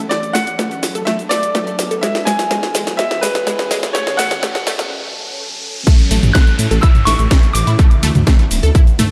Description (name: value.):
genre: progressive house.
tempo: 125 BPM.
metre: 4/4.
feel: straight.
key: A major.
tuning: A4 = 440 Hz.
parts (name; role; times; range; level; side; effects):
shimmering ambient pad; sustained chords; 0.0-9.1 s; C#3 to A4; -30 LUFS; equal; chorus, built-in reverb, phaser, sidechain pumping.
unison pluck; arpeggios; 0.0-9.0 s; G#3 to A4; -25 LUFS; equal; sidechain pumping, delay.
riser and downlifter; sound effects; 3.4-9.1 s; none; -31 LUFS; equal; none.
bright grand piano; melody; 0.1-8.0 s; B4 to F#6; -23 LUFS; equal; sidechain pumping, delay.
house drum kit; drums; 0.1-9.1 s; crash cymbal, hi-hat, ride cymbal, shaker, snare drum; -23 LUFS; equal; none.
electronic kick drum; drums; 5.9-8.8 s; none; -12 LUFS; equal; none.
dark detuned saw bass; bass; 6.1-9.1 s; D1 to A2; -17 LUFS; equal; sidechain pumping.
electronic toms and congas; percussion; 6.2-9.1 s; none; -21 LUFS; equal; sidechain pumping on toms, sidechain pumping on perc.
glassy wavetable pluck; second line; 6.3-8.0 s; C#6 to F#6; -29 LUFS; equal; none.
room: moderate lush hall reverb, RT60 2.2 s.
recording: dark, warm production, high-pass filter.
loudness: -15 LUFS.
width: mono.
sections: 0.0-5.9 A section; 5.9-9.1 B section.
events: build-up 0.0-5.9; drum fill 0.0-4.9; filter sweep on synth pluck 0.0-5.9; filter sweep on ambient pad 0.0-5.9; filter sweep 0.0-5.9; break 4.9-5.9; drop 5.9-9.1.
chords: 0.1 D6; 2.0 C#m7; 3.9 F#m; 5.9 A; 7.8 D6.